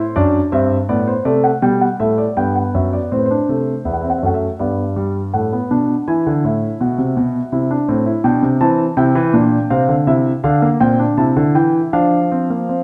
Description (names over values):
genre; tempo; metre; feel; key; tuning
classical, baroque-style 3-part fugue for grand piano; 81 BPM; 4/4; straight; unclear; A4 = 441 Hz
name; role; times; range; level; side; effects
warm concert grand piano; solo; 0.0-12.8 s; E2 to A5; -16 LUFS; equal; none
room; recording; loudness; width
wet recital hall reverb, RT60 1.6 s; dark, warm production; -16 LUFS; mono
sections
0.0-3.1 A section; 3.1-12.8 B section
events
none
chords
0.2 D/F#; 1.6 G; 3.1 D7/A; 4.6 G; 6.1 E; 7.5 Am; 9.0 C; 10.4 Bb/D; 11.2 C; 11.9 F5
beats
| 0.16 0.89 1.64 2.38 | 3.12 3.86 4.60 5.34 | 6.07 6.80 7.53 8.25 | 8.98 9.71 10.44 11.19 | 11.94 12.70